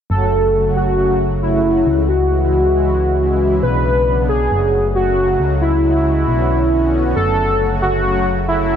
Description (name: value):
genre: trance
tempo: 136 BPM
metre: 4/4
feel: straight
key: F# minor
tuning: A4 = 440 Hz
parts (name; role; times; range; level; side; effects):
- warm velvety synth lead; second line; 0.1-8.8 s; E4 to B4; -16 LUFS; equal; chorus, cassette tape, tape echo
- lush unison pad; sustained chords; 0.1-8.8 s; C#3 to F#4; -20 LUFS; equal; chorus
- solid FM bass; bass; 0.1-8.8 s; F#1 to C#2; -19 LUFS; equal; none
room: light reverb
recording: none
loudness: -13 LUFS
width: side -8 dB against mid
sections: 0.1-8.8 A section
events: none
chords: 0.1 F#m; 1.9 C#m; 3.6 Bmadd9; 4.5 F#m; 5.4 C#sus4; 6.3 Bmadd9; 7.2 F#m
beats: | 0.10 0.54 0.98 1.42 | 1.86 2.31 2.75 3.19 | 3.63 4.07 4.51 4.95 | 5.39 5.83 6.28 6.72 | 7.16 7.60 8.04 8.48